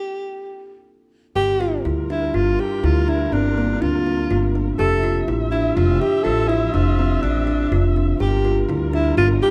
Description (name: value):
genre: contemporary instrumental, chamber music in an uneven meter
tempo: 123 BPM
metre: 7/4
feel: straight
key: G dorian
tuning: A4 = 441 Hz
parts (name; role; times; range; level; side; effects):
- breathy alto saxophone; melody; 0.0-9.5 s; D4 to A4; -25 LUFS; equal; none
- dark chamber string section; sustained chords; 1.4-9.5 s; F3 to E5; -32 LUFS; equal; none
- kalimba; arpeggios; 1.4-9.5 s; Bb3 to G4; -24 LUFS; equal; none
- upright bass; bass; 1.4-9.4 s; F1 to D2; -23 LUFS; equal; none
room: light reverb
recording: dark, warm production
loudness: -19 LUFS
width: mono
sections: 0.0-1.4 A section; 1.4-9.5 B section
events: stop 0.0-1.4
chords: 0.0 N.C.; 1.4 Gm7; 4.8 Dm7/F; 8.2 Gm7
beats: 0.36 0.86 | 1.36 1.85 2.35 2.84 3.33 3.82 4.31 | 4.79 5.28 5.77 6.25 6.74 7.23 7.72 | 8.20 8.69 9.18